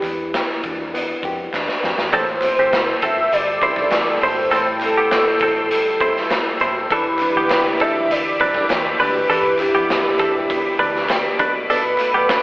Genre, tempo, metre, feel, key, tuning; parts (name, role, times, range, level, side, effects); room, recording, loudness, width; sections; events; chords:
indie pop, bedroom pop; 100 BPM; 4/4; straight; A minor; A4 = 441 Hz
warm velvety synth lead; melody; 0.0-12.4 s; G4 to E5; -19 LUFS; equal; chorus
nylon-string guitar; accompaniment; 0.0-12.4 s; A2 to G4; -25 LUFS; left 1 dB; warbly pitch drift
vintage muted fingered electric bass; bass; 0.0-12.4 s; E1 to G2; -41 LUFS; equal
raw garage drum kit; drums; 0.0-12.4 s; hi-hat, kick drum, snare drum; -22 LUFS; equal
group handclap; percussion; 0.0-12.4 s; -28 LUFS; right 1 dB
direct-recorded clean electric guitar; second line; 2.1-12.4 s; B3 to C5; -20 LUFS; right 1 dB
phased analog pad; sustained chords; 2.1-12.4 s; G4 to E6; -24 LUFS; equal; phaser, chorus
moderate studio reverb, RT60 0.8 s; band playing live in one room, telephone sound; -16 LUFS; side -20 dB against mid
0.0-2.1 A section; 2.1-12.4 B section
drum fill 1.5-2.1
0.0 Em7; 2.1 Am7; 6.9 Em7; 11.4 Bm7